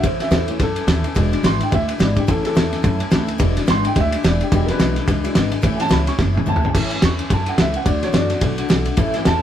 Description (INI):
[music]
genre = rockabilly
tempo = 215 BPM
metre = 4/4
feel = swing 58% on 8ths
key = A major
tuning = A4 = 441 Hz
[part]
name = dark upright piano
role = accompaniment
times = 0.0-9.4 s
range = E3 to C#6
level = -24 LUFS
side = right 1 dB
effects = none
[part]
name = picked steel-string acoustic guitar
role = accompaniment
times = 0.0-9.4 s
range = E2 to F#4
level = -25 LUFS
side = left 4 dB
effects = none
[part]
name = upright bass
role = bass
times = 0.0-9.4 s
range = E1 to F#2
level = -22 LUFS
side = equal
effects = none
[part]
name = cloth-damped thuddy drum kit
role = drums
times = 0.0-9.3 s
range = crash cymbal, kick drum, ride cymbal, snare drum, toms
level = -18 LUFS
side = equal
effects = none
[sound]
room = light reverb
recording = band playing live in one room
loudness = -16 LUFS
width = side -10 dB against mid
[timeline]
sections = 0.0-6.7 A section; 6.7-9.4 A section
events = upright piano solo 0.0-9.4; drum fill 6.2-6.7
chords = 0.0 A; 1.2 E7; 2.3 A; 3.4 E7; 5.6 A; 7.9 D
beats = | 0.04 0.32 0.60 0.88 | 1.16 1.44 1.72 2.00 | 2.28 2.56 2.84 3.12 | 3.40 3.67 3.96 4.23 | 4.51 4.79 5.07 5.35 | 5.63 5.91 6.19 6.47 | 6.75 7.03 7.31 7.59 | 7.87 8.14 8.42 8.70 | 8.98 9.26